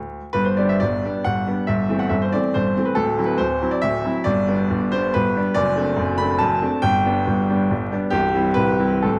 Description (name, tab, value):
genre	classical, romantic triple-time dance for piano with dotted rhythms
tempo	139 BPM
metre	3/4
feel	uneven beats, rubato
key	G major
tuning	A4 = 438 Hz
part	clear baby grand piano	solo	0.0-9.2 s	C1 to B5	-20 LUFS	equal	none
room	wet recital hall reverb, RT60 1.5 s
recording	vinyl crackle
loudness	-20 LUFS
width	mono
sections	0.3-9.2 A section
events	none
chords	0.3 G; 1.7 Am/G; 3.0 D9; 4.3 G; 5.6 D7/F#; 6.8 G; 8.1 C